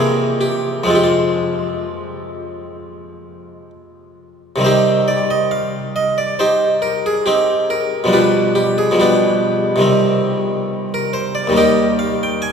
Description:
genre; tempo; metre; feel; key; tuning
classical, baroque-style suite movement for harpsichord; 62-71 BPM; 4/4; rubato; F minor, C minor from 4.6 s; A4 = 441 Hz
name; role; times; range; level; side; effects
harpsichord; solo; 0.0-12.5 s; Eb2 to Ab5; -14 LUFS; equal; none
room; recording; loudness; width
wet cathedral reverb, RT60 5.3 s; recorded in a church or concert hall; -14 LUFS; side -6 dB against mid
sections
0.0-4.6 A section; 4.6-12.5 A section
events
none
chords
0.0 C7; 0.9 Fm; 4.6 Cm; 8.1 G7/B; 9.8 Cm; 11.5 Eb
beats
| 0.85 1.81 2.76 3.69 | 4.62 5.51 6.38 7.24 | 8.11 8.98 9.84 10.70 | 11.55 12.40

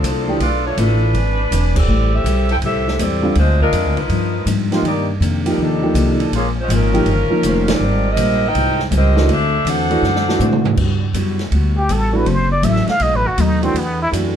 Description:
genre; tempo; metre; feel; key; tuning
jazz, big band swing; 162 BPM; 4/4; swing 66% on 8ths; unclear; A4 = 440 Hz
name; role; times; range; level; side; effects
mellow saxophone section; melody; 0.0-10.7 s; F3 to G5; -20 LUFS; equal; none
picked steel-string acoustic guitar; accompaniment; 0.0-14.4 s; G2 to C5; -23 LUFS; left 4 dB; none
upright bass; bass; 0.0-14.4 s; E1 to A2; -18 LUFS; equal; none
open jazz drum kit; drums; 0.0-14.2 s; crash cymbal, hi-hat, kick drum, ride cymbal, snare drum, toms; -25 LUFS; right 2 dB; none
warm grand piano; accompaniment; 0.3-0.4, 3.2-14.4 s; D3 to Bb4; -20 LUFS; right 2 dB; none
trumpet with plunger mute; melody; 11.8-14.1 s; B3 to F5; -19 LUFS; equal; plate reverb
room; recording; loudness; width
moderate club reverb, RT60 0.5 s; dark, warm production; -14 LUFS; side -9 dB against mid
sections
0.0-10.8 A section; 10.8-14.4 B section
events
band accent 1.7, 7.6; drum fill 10.0-10.8; muted trumpet solo 10.8-14.4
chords
0.4 Bm7b5; 1.1 E7b13; 1.9 Am7; 3.4 Dm7b5; 4.1 G7alt; 4.8 Cm9; 6.3 Bbm7; 7.1 Eb13; 7.8 Abmaj13; 9.3 D7; 10.8 Gmaj13; 12.3 F#m7b5; 13.0 B7; 13.8 Em11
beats
0.03 | 0.40 0.77 1.14 1.51 | 1.88 2.25 2.63 3.00 | 3.37 3.74 4.11 4.48 | 4.85 5.22 5.59 5.96 | 6.33 6.70 7.07 7.44 | 7.81 8.18 8.55 8.92 | 9.29 9.66 10.04 10.41 | 10.78 11.15 11.52 11.89 | 12.26 12.64 13.01 13.38 | 13.75 14.12

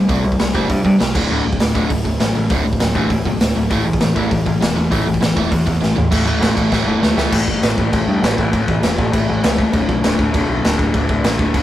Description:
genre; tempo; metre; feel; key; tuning
punk rock; 199 BPM; 4/4; straight; unclear; A4 = 437 Hz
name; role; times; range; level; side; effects
crunchy overdriven guitar; riff; 0.0-11.6 s; D2 to C4; -20 LUFS; left 4 dB; none
overdriven electric guitar; riff; 0.0-7.3 s; D2 to C4; -21 LUFS; right 3 dB; none
growling picked electric bass; bass; 0.0-11.6 s; D1 to G2; -21 LUFS; equal; overdrive
raw garage drum kit; drums; 0.1-11.6 s; crash cymbal, hi-hat, kick drum, snare drum, toms; -18 LUFS; right 1 dB; none
room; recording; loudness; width
light reverb; rough rehearsal-room recording, warm saturation; -14 LUFS; side -13 dB against mid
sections
0.0-6.1 A section; 6.1-7.3 B section; 7.3-11.6 C section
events
drum fill 5.8-6.1, 6.7-7.3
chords
0.0 C5; 1.1 D5; 3.7 A5; 9.7 D5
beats
| 0.09 0.40 0.70 1.00 | 1.30 1.60 1.90 2.21 | 2.51 2.81 3.11 3.41 | 3.71 4.01 4.32 4.62 | 4.92 5.22 5.52 5.82 | 6.12 6.42 6.73 7.03 | 7.33 7.63 7.93 8.23 | 8.53 8.84 9.14 9.44 | 9.74 10.04 10.34 10.64 | 10.94 11.24 11.55

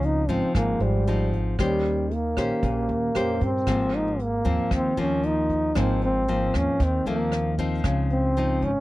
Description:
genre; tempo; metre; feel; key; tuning
bossa nova; 115 BPM; 4/4; straight; unclear; A4 = 440 Hz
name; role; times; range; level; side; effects
breathy trombone; melody; 0.0-8.8 s; G3 to Eb4; -25 LUFS; equal; none
nylon-string guitar; accompaniment; 0.0-8.8 s; Ab2 to C5; -27 LUFS; left 3 dB; none
warm grand piano; accompaniment; 0.0-7.9 s; Eb4 to C5; -38 LUFS; right 8 dB; none
upright bass; bass; 0.0-8.7 s; Ab1 to G2; -27 LUFS; equal; none
vintage brush drum kit; drums; 0.0-8.7 s; hi-hat, kick drum, rim click; -29 LUFS; right 1 dB; none
room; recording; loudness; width
little or no reverb; dry, close 1970s-style studio recording; -21 LUFS; side -17 dB against mid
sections
0.0-8.8 A section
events
none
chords
0.0 Dbmaj9; 1.6 Eb13; 3.7 Ab69; 7.8 Dbmaj9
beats
0.03 0.55 1.06 | 1.59 2.11 2.63 3.15 | 3.67 4.19 4.71 5.23 | 5.75 6.27 6.79 7.31 | 7.83 8.36

